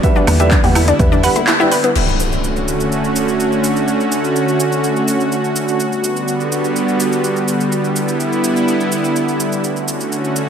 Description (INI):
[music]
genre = progressive house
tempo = 125 BPM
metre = 4/4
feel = straight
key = D major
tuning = A4 = 439 Hz
[part]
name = supersaw pad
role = sustained chords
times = 0.0-10.5 s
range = D3 to F#4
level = -16 LUFS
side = right 1 dB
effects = sidechain pumping
[part]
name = analog pluck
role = arpeggios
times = 0.0-1.9 s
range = B3 to B4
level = -18 LUFS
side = left 2 dB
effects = chorus, sidechain pumping, ping-pong delay
[part]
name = dark baby grand piano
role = stabs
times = 0.0-1.7 s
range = G3 to G5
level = -20 LUFS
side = right 3 dB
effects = sidechain pumping, ping-pong delay
[part]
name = deep house drum kit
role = drums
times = 0.0-10.5 s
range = cabasa, crash cymbal, handclaps, hi-hat, woodblock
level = -22 LUFS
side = equal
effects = overdrive, studio reverb
[part]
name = electronic kick drum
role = drums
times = 0.0-1.1 s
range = none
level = -15 LUFS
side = equal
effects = overdrive, studio reverb
[part]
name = congas and bongos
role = percussion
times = 0.2-1.4 s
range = none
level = -26 LUFS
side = left 1 dB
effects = sidechain pumping on perc
[part]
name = tight sequencer bass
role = bass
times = 0.3-1.3 s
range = E2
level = -16 LUFS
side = equal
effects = sidechain pumping
[part]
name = impact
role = sound effects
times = 2.0-3.9 s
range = none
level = -21 LUFS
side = equal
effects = none
[sound]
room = moderate lush hall reverb, RT60 2.4 s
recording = none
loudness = -13 LUFS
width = side -8 dB against mid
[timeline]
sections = 0.0-2.0 A section; 2.0-10.5 B section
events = filter sweep on grand piano 0.0-2.0; kick drops out 1.5-2.0; band accent 1.5; impact 2.0-3.9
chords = 0.0 Em7; 2.0 Dmaj7; 5.8 Gmaj7; 7.7 Em7; 9.6 Dmaj7